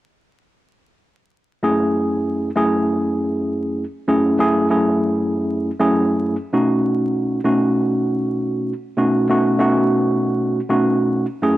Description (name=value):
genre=hip hop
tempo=98 BPM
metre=4/4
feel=swing 61% on 16ths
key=F# dorian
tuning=A4 = 440 Hz
part: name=mellow tine electric piano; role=accompaniment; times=1.6-11.6 s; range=F#2 to G#4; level=-16 LUFS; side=equal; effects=medium stereo tremolo, cassette tape, high-pass filter, low-pass filter
room=light reverb, digital ambience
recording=dry, gritty hardware recording, vinyl crackle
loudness=-16 LUFS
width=side -15 dB against mid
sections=1.6-11.6 A section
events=none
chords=1.6 F#m7; 6.5 B7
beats=| 1.63 2.25 2.86 3.47 | 4.08 4.70 5.31 5.92 | 6.53 7.14 7.76 8.37 | 8.98 9.59 10.21 10.82 | 11.43